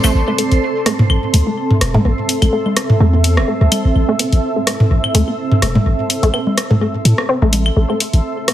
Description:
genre	minimal techno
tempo	126 BPM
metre	4/4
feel	swing 55% on 16ths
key	A minor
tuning	A4 = 440 Hz
part	resonant blip pluck	riff	0.0-8.5 s	A3 to C4	-20 LUFS	equal	chorus, digital delay
part	punchy sub bass	bass	0.0-8.2 s	E1 to A2	-13 LUFS	equal	none
part	electronic cabasa and hi-hat	drums	0.0-8.5 s	none	-19 LUFS	left 2 dB	none
part	booming analog drum machine	percussion	0.0-8.5 s	claves, congas, rim click, toms	-16 LUFS	equal	overdrive, digital delay
part	granular cloud pad	texture	0.0-8.5 s	C4 to C6	-20 LUFS	right 2 dB	built-in reverb
room	moderate studio reverb, RT60 0.6 s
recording	heavily compressed radio sound, multiband compression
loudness	-12 LUFS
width	side -12 dB against mid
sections	0.1-8.5 A section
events	none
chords	0.1 Am

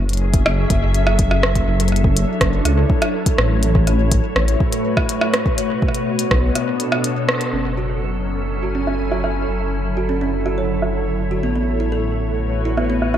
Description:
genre	IDM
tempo	123 BPM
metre	4/4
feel	straight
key	D lydian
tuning	A4 = 440 Hz
part	glassy FM pad	sustained chords	0.1-13.2 s	A2 to G#5	-22 LUFS	equal	ensemble chorus, built-in reverb
part	dark detuned saw bass	bass	0.0-13.2 s	F#1 to C#2	-20 LUFS	equal	none
part	glitchy drum kit	drums	0.1-13.2 s	cabasa, hi-hat, rim click	-23 LUFS	right 1 dB	low-pass filter on snare, studio ambience, low-pass filter on hats, low-pass filter on perc, analog delay
part	electronic kick drum	drums	0.3-6.4 s	none	-19 LUFS	equal	studio ambience
part	kalimba	arpeggios	7.5-13.2 s	B3 to C#5	-25 LUFS	right 3 dB	vintage 12-bit sampler grit, low-pass filter, dub echo
room	moderate spring reverb, RT60 2.3 s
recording	echo-heavy mix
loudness	-16 LUFS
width	side -10 dB against mid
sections	0.0-7.5 A section; 7.5-13.2 B section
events	band accent 7.3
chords	0.0 F#m9; 1.7 Dmaj7/F#; 3.6 A69; 5.6 Bm7; 7.5 F#m9; 9.5 Dmaj7/F#; 11.4 A69

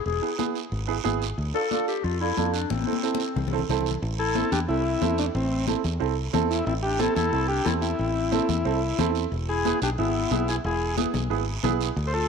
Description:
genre	latin, cumbia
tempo	181 BPM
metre	4/4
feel	straight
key	A harmonic minor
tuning	A4 = 442 Hz
part	growling clarinet	second line	0.0-12.3 s	A3 to A4	-31 LUFS	left 10 dB	none
part	fingered electric bass	bass	0.1-12.3 s	E1 to F2	-28 LUFS	equal	none
part	guiro	percussion	0.1-12.3 s	none	-37 LUFS	right 13 dB	none
part	warm upright piano	accompaniment	0.2-11.9 s	B3 to A4	-29 LUFS	right 13 dB	none
part	congas	percussion	0.4-11.8 s	none	-31 LUFS	left 13 dB	none
part	combo organ	melody	4.2-12.3 s	C4 to C5	-28 LUFS	left 1 dB	tape echo
room	moderate plate reverb, RT60 3.0 s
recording	1960s-style stereo with parts hard left and right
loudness	-23 LUFS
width	side -6 dB against mid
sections	0.0-4.0 A section; 4.0-12.3 B section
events	clarinet solo 0.0-4.0; drum fill 2.7-4.0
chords	0.0 E; 1.4 Dm; 2.7 Am; 9.3 E

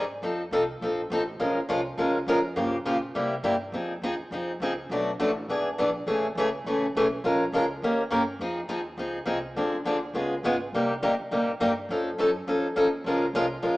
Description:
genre	acoustic string swing (jazz manouche)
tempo	206 BPM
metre	4/4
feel	swing 58% on 8ths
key	F minor from 8.4 s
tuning	A4 = 439 Hz
part	picked steel-string acoustic guitar	accompaniment	0.0-13.8 s	B2 to Bb4	-24 LUFS	equal	none
part	upright bass	bass	0.0-13.8 s	G#1 to C3	-41 LUFS	equal	none
room	wet stone room reverb, RT60 1.4 s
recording	band playing live in one room, small speaker sound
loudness	-24 LUFS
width	side -19 dB against mid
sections	0.0-8.4 A section; 8.4-13.8 B section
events	none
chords	0.2 F7; 1.4 Bbm7; 2.6 Gm7b5; 3.1 C7; 3.7 Fm7; 4.9 Bm7; 5.5 E7; 6.1 Amaj7; 7.2 Bbm7; 7.8 Eb7; 8.4 Fm7; 9.6 Dm7b5; 10.2 Db7; 10.7 Cm7; 11.9 Faug7; 13.1 Bbm7

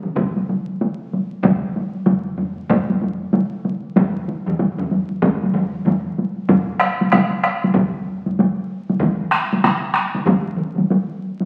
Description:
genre	japanese traditional, taiko drum ensemble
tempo	95 BPM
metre	4/4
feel	swing 60% on 16ths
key	none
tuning	none
part	taiko ensemble	percussion	0.0-10.9 s	none	-24 LUFS	equal	none
part	taiko ensemble	percussion	0.1-11.5 s	none	-21 LUFS	equal	none
part	taiko ensemble	percussion	0.2-10.4 s	none	-26 LUFS	equal	none
part	taiko ensemble	percussion	1.4-8.4 s	none	-26 LUFS	equal	none
room	wet large studio reverb, RT60 1.2 s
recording	very old 78 rpm record, vinyl crackle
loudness	-20 LUFS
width	mono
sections	0.0-6.5 A section; 6.5-11.5 B section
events	none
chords	none

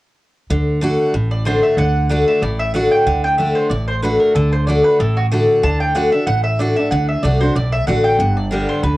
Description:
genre	bluegrass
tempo	187 BPM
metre	4/4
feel	swing 54% on 8ths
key	D mixolydian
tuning	A4 = 440 Hz
part	picked steel-string acoustic guitar	accompaniment	0.5-9.0 s	G2 to G4	-16 LUFS	left 1 dB	cassette tape
part	upright bass	bass	0.5-9.0 s	G1 to D2	-19 LUFS	equal	none
part	mandolin	melody	1.3-9.0 s	F#4 to A5	-21 LUFS	right 1 dB	none
room	moderate booth ambience, RT60 0.2 s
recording	home recording on cassette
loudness	-14 LUFS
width	side -18 dB against mid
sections	0.5-9.0 A section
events	none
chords	0.5 D; 8.2 G

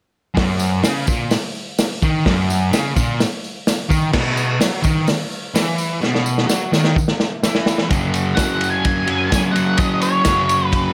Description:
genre	garage rock duo or trio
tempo	128 BPM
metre	4/4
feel	straight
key	F# major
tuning	A4 = 442 Hz
part	fuzz guitar	riff	0.3-10.9 s	F#2 to F#3	-21 LUFS	equal	distortion
part	vintage drum kit	drums	0.4-10.8 s	crash cymbal, hi-hat, kick drum, ride cymbal, snare drum	-22 LUFS	equal	none
part	tambourine	percussion	0.6-10.8 s	none	-33 LUFS	equal	none
part	octave-fuzz lead guitar	melody	8.3-10.9 s	C#5 to G#5	-22 LUFS	equal	distortion
room	light reverb, small room ambience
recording	none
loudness	-18 LUFS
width	mono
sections	0.4-7.9 A section; 7.9-10.9 B section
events	drum fill 6.0-7.9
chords	0.4 F#; 4.1 B5; 7.9 F#5

